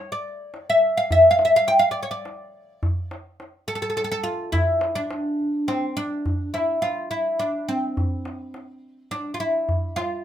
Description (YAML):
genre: Persian modal ensemble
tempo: 105 BPM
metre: 3/4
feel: straight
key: D avaz esfahan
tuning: A4 = 440 Hz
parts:
  - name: oud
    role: melody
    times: 0.0-10.2 s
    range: C4 to G5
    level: -20 LUFS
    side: equal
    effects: none
  - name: tombak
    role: percussion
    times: 0.5-10.1 s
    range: none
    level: -26 LUFS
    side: equal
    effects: none
room: wet studio reverb, RT60 0.5 s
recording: minimal, uncompressed stereo recording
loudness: -20 LUFS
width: side -10 dB against mid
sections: 0.0-6.3 A section; 6.3-10.2 B section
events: none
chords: none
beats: 0.54 | 1.11 1.68 2.25 | 2.82 3.40 3.97 | 4.54 5.11 5.68 | 6.25 6.83 7.40 | 7.97 8.54 9.12 | 9.69